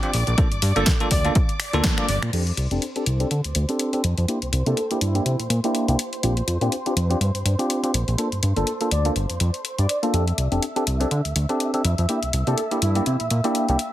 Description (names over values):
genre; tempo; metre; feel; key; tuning
filtered disco house; 123 BPM; 4/4; swing 56% on 16ths; F major; A4 = 440 Hz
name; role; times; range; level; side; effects
bell-like tine electric piano; accompaniment; 0.0-13.8 s; Bb3 to A4; -25 LUFS; equal; phaser, sidechain pumping, low-pass filter
warm studio violin section; sustained chords; 0.0-13.9 s; C5 to E6; -33 LUFS; right 1 dB; sidechain pumping, low-pass filter
house drum kit; drums; 0.0-13.9 s; crash cymbal, finger snaps, hi-hat, snare drum; -26 LUFS; left 2 dB; sidechain pumping on hats, sidechain pumping on cymbals
fat analog bass; bass; 0.1-13.8 s; F1 to D3; -22 LUFS; equal; sidechain pumping, low-pass filter
electronic kick drum; drums; 0.4-2.0 s; none; -20 LUFS; equal; none
analog synth brass; melody; 0.8-5.4, 8.6-13.2 s; E4 to D5; -30 LUFS; equal; chorus, sidechain pumping, low-pass filter, ping-pong delay
room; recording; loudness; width
light reverb; heavily compressed radio sound, multiband compression; -20 LUFS; side -14 dB against mid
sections
0.0-2.3 A section; 2.3-13.9 B section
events
band accent 1.8; filter sweep 2.3-13.9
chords
0.4 Gm7; 2.3 F6; 4.3 C9; 6.0 Bb6; 8.2 Gm7; 10.1 F6; 12.1 C9